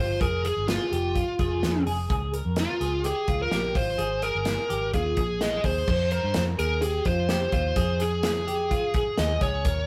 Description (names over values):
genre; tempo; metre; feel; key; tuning
jangly indie pop; 127 BPM; 4/4; straight; unclear; A4 = 441 Hz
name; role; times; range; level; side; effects
bluesy overdriven lead guitar; melody; 0.0-9.9 s; F4 to Eb5; -30 LUFS; equal; distortion
twelve-string electric guitar; arpeggios; 0.0-9.9 s; F4 to C5; -34 LUFS; equal; vibrato effect
vintage muted fingered electric bass; bass; 0.0-9.9 s; F1 to G2; -31 LUFS; equal; none
modern studio drum kit; drums; 0.2-9.8 s; crash cymbal, hi-hat, kick drum, snare drum; -32 LUFS; equal; none
room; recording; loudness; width
moderate studio reverb, RT60 0.6 s; rough rehearsal-room recording, tube saturation; -26 LUFS; mono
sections
0.0-5.9 A section; 5.9-9.9 B section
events
none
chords
0.2 Fm; 2.1 Db; 3.8 Ab; 4.9 Ebsus4; 5.9 Fm